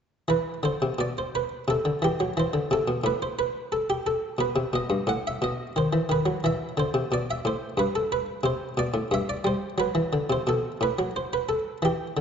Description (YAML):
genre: classical, baroque-style suite movement for harpsichord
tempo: 89 BPM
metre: 3/4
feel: rubato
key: E minor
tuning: A4 = 439 Hz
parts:
  - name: buff-stop harpsichord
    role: solo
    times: 0.3-12.2 s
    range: G2 to F#5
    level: -24 LUFS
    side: equal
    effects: none
room: moderate scoring stage reverb, RT60 1.8 s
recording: dark, warm production, nothing above 7.9 kHz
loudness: -24 LUFS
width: side -7 dB against mid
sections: 0.3-12.2 A section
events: none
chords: 0.3 E5; 2.4 Am; 4.4 B7; 6.4 Em; 9.8 Cmaj9#11; 10.5 B5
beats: | 0.28 0.98 1.68 | 2.37 3.04 3.72 | 4.41 5.10 5.77 | 6.44 7.11 7.78 | 8.44 9.12 9.79 | 10.47 11.14 11.82